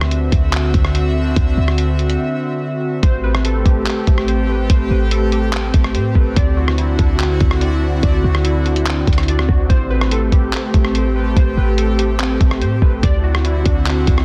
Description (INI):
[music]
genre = hip hop, atmospheric cloud-rap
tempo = 144 BPM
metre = 4/4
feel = half-time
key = A dorian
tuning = A4 = 436 Hz
[part]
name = airy breathy pad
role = sustained chords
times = 0.0-14.2 s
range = D3 to E5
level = -23 LUFS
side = equal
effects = chorus, sidechain pumping
[part]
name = clean 808-style bass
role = bass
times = 0.0-14.2 s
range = A1 to A2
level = -19 LUFS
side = equal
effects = none
[part]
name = lo-fi sampler-style drum kit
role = drums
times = 0.0-14.2 s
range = handclaps, hi-hat, kick drum, rim click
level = -20 LUFS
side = equal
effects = soft clipping on snare
[part]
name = warbly lo-fi synth keys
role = arpeggios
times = 3.0-14.2 s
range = D3 to D5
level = -27 LUFS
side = equal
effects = chorus, digital delay
[sound]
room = digital ambience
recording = dense, heavily limited modern master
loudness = -16 LUFS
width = mono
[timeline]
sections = 0.0-3.0 A section; 3.0-14.2 B section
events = break 2.2-3.0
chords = 0.0 D9; 3.0 Am9; 6.4 D9; 9.7 Am9; 13.0 D9